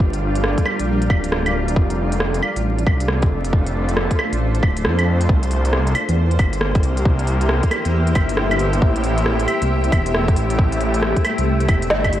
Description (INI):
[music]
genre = future garage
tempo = 136 BPM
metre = 4/4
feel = swing 63% on 16ths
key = unclear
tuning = A4 = 439 Hz
[part]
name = granular cloud pad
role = sustained chords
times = 0.0-12.2 s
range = G3 to E5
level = -23 LUFS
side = equal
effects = built-in reverb, sidechain pumping
[part]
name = swelling detuned saw bass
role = bass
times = 0.0-12.2 s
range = D1 to F2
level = -20 LUFS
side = equal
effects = tube saturation, sidechain pumping
[part]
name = electronic kick drum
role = drums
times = 0.0-12.1 s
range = none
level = -18 LUFS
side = equal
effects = overdrive
[part]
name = organic electronic drum kit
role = drums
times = 0.1-12.2 s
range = claves, hi-hat, rim click, snare drum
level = -23 LUFS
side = right 1 dB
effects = overdrive
[sound]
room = light reverb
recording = vinyl crackle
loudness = -16 LUFS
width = side -12 dB against mid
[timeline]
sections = 0.0-12.2 A section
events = drum fill 11.9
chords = 0.0 Gm7; 1.8 F6; 5.3 C7; 8.8 Am7